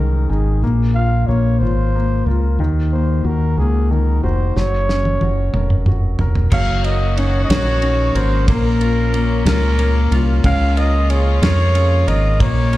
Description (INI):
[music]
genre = six-eight pop ballad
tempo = 61 BPM (dotted quarters)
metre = 6/8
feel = straight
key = unclear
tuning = A4 = 440 Hz
[part]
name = breathy flugelhorn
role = melody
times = 0.0-12.8 s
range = Ab4 to F5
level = -23 LUFS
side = equal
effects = slapback echo, digital delay
[part]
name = clear concert grand piano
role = accompaniment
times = 0.0-12.8 s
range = Eb3 to Bb4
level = -23 LUFS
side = left 5 dB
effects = slapback echo
[part]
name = fingered electric bass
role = bass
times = 0.0-12.8 s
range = F1 to F2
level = -16 LUFS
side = equal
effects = none
[part]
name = damped 70s drum kit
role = drums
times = 4.6-12.8 s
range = crash cymbal, kick drum, ride cymbal, snare drum, toms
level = -21 LUFS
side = equal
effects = none
[part]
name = rich chamber string section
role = sustained chords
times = 6.5-12.8 s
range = Bb2 to Gb4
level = -27 LUFS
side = left 2 dB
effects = none
[part]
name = direct-recorded clean electric guitar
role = arpeggios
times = 6.5-12.8 s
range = Ab3 to Db5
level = -30 LUFS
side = right 3 dB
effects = slapback echo
[sound]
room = studio reverb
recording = live gig heard through the venue's PA, club reverb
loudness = -14 LUFS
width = side -16 dB against mid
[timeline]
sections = 0.0-6.5 A section; 6.5-12.8 B section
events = drum fill 4.6-6.5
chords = 0.0 Dbsus2; 0.6 Bbm; 2.6 Ebmadd9; 4.6 Gb; 6.5 Gb6; 8.5 Bbmadd9; 10.4 Db6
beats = | 0.62 1.61 | 2.59 3.57 | 4.56 5.54 | 6.52 7.50 | 8.48 9.46 | 10.44 11.42 | 12.40